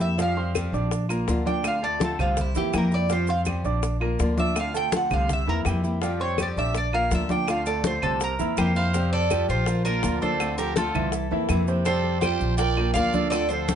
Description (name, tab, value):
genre	latin, Cuban son and guajira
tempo	164 BPM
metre	4/4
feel	straight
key	F major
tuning	A4 = 440 Hz
part	Cuban tres	melody	0.0-13.8 s	E4 to G5	-27 LUFS	right 1 dB	none
part	nylon-string guitar	accompaniment	0.0-13.8 s	C3 to G4	-31 LUFS	left 3 dB	none
part	clear concert grand piano	arpeggios	0.0-13.8 s	C3 to D6	-30 LUFS	right 4 dB	none
part	upright bass	bass	0.0-13.8 s	Bb1 to F2	-26 LUFS	equal	none
part	bongos	percussion	0.0-13.8 s	none	-32 LUFS	left 9 dB	none
part	congas	percussion	0.0-13.8 s	none	-31 LUFS	left 2 dB	none
part	maracas	percussion	0.0-13.8 s	none	-41 LUFS	right 6 dB	none
part	claves	percussion	0.6-13.5 s	none	-35 LUFS	right 2 dB	none
part	growling trumpet	second line	8.6-13.8 s	F4 to D5	-32 LUFS	right 4 dB	none
room	light reverb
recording	nothing above 10.5 kHz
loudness	-22 LUFS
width	side -8 dB against mid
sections	0.0-8.9 A section; 8.9-13.8 B section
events	Cuban tres solo 0.0-8.9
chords	0.2 Fsus2; 0.9 Bb; 1.6 Dm7; 2.4 C7; 3.1 Fsus2; 3.8 Bb; 4.6 Dm7; 5.3 C7; 6.0 Fsus2; 6.8 Bb; 7.5 Dm7; 8.2 C7; 8.9 Fadd9; 9.7 Bb; 10.4 Dm7; 11.1 C7; 11.9 Fadd9; 12.6 Bb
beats	| 0.18 0.55 0.91 1.28 | 1.64 2.01 2.37 2.74 | 3.10 3.47 3.83 4.20 | 4.56 4.93 5.29 5.66 | 6.02 6.39 6.75 7.12 | 7.48 7.84 8.21 8.57 | 8.94 9.30 9.67 10.03 | 10.40 10.76 11.13 11.49 | 11.86 12.22 12.59 12.95 | 13.32 13.68